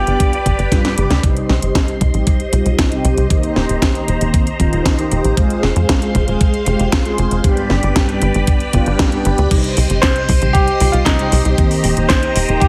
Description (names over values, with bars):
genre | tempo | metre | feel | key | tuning
italo disco | 116 BPM | 4/4 | straight | C minor | A4 = 440 Hz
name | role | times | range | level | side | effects
bright grand piano | melody | 0.0-0.9, 10.0-12.7 s | Eb4 to C5 | -21 LUFS | equal | digital delay
phased string machine | sustained chords | 0.0-12.7 s | Ab3 to C6 | -24 LUFS | equal | ensemble chorus, phaser
mellow synth brass | stabs | 0.0-12.7 s | G2 to Ab4 | -23 LUFS | equal | chorus, digital delay
tight sequencer bass | bass | 0.0-12.6 s | Eb1 to F2 | -18 LUFS | equal | none
house drum kit | drums | 0.1-12.7 s | crash cymbal, handclaps, hi-hat, snare drum | -23 LUFS | equal | small room ambience
electronic kick drum | drums | 0.2-12.7 s | none | -18 LUFS | equal | small room ambience
room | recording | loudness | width
light reverb | heavily compressed radio sound | -15 LUFS | mono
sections
0.0-1.2 A section; 1.2-9.5 B section; 9.5-12.7 C section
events
filter sweep on analog polysynth 0.0-1.2; drum fill 0.7-1.2; band accent 1.1; filter sweep on string machine 1.2-9.5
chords
0.0 G; 1.2 Cm; 3.3 Eb6; 5.4 Fm; 7.4 G; 9.5 Cm; 11.6 Eb6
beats
0.20 0.72 | 1.24 1.75 2.27 2.79 | 3.31 3.82 4.34 4.86 | 5.38 5.89 6.41 6.93 | 7.44 7.96 8.48 8.99 | 9.51 10.03 10.55 11.06 | 11.58 12.10 12.62